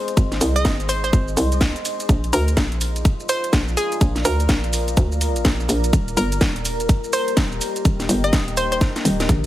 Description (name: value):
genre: bass house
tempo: 125 BPM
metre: 4/4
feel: swing 62% on 16ths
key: unclear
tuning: A4 = 439 Hz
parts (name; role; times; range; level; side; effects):
- deep dark ambient pad; texture; 0.0-9.5 s; F4 to C6; -28 LUFS; left 1 dB; chorus, built-in reverb, sidechain pumping
- garage drum kit; drums; 0.1-9.5 s; hi-hat, shaker, snare drum, toms; -24 LUFS; equal; studio reverb
- hollow knocking FM bass; bass; 0.2-9.5 s; Eb1 to D2; -21 LUFS; equal; tube saturation, sidechain pumping
- electronic kick drum; drums; 0.2-9.4 s; none; -18 LUFS; equal; studio reverb
- hollow square pluck; melody; 0.6-8.8 s; Ab4 to Eb5; -25 LUFS; right 1 dB; chorus, dub echo
room: light reverb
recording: heavily compressed radio sound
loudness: -17 LUFS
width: side -14 dB against mid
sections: 0.0-9.5 A section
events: drum fill 8.8-9.5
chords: 0.0 Ab; 2.1 Bb; 5.9 Eb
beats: | 0.17 0.65 1.13 1.61 | 2.09 2.57 3.05 3.53 | 4.01 4.49 4.97 5.45 | 5.93 6.41 6.89 7.37 | 7.85 8.33 8.81 9.29